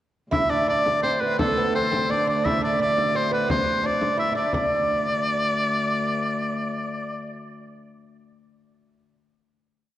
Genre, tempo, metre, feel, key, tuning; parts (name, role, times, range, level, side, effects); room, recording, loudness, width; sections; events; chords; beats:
medieval dance; 173 BPM; 3/4; straight; A4 = 440 Hz
edgy shawm; melody; 0.3-7.3 s; A4 to E5; -24 LUFS; left 1 dB
oud; second line; 0.3-8.0 s; A3 to E4; -25 LUFS; right 2 dB
clear viola da gamba; drone; 0.3-7.3 s; D2; -30 LUFS; left 2 dB
frame drum; percussion; 0.3-4.7 s; -30 LUFS; left 2 dB
wet concert hall reverb, RT60 2.5 s; worn, warbling old tape, cassette tape, warbly pitch drift; -21 LUFS; side -13 dB against mid
0.3-4.5 A section; 4.5-6.5 final note
speeding up 0.3-6.5
| 0.32 0.67 1.03 | 1.39 1.74 2.09 | 2.45 2.80 3.15 | 3.50 3.84 4.19 | 4.53 4.87 5.21 | 5.55 5.88 6.21